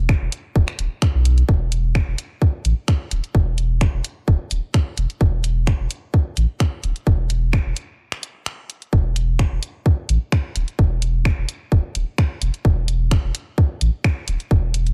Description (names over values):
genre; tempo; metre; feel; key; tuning
minimal techno; 129 BPM; 4/4; swing 53% on 16ths; unclear; A4 = 440 Hz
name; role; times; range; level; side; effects
saturated sub bass; bass; 0.0-14.9 s; D1 to B1; -22 LUFS; equal; sidechain pumping
electronic kick drum; drums; 0.1-14.6 s; none; -20 LUFS; equal; none
punchy analog drum machine; drums; 0.1-14.9 s; finger snaps, hi-hat; -30 LUFS; equal; none
room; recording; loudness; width
little or no reverb; none; -20 LUFS; mono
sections
0.0-14.9 A section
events
break 8.0-8.9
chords
none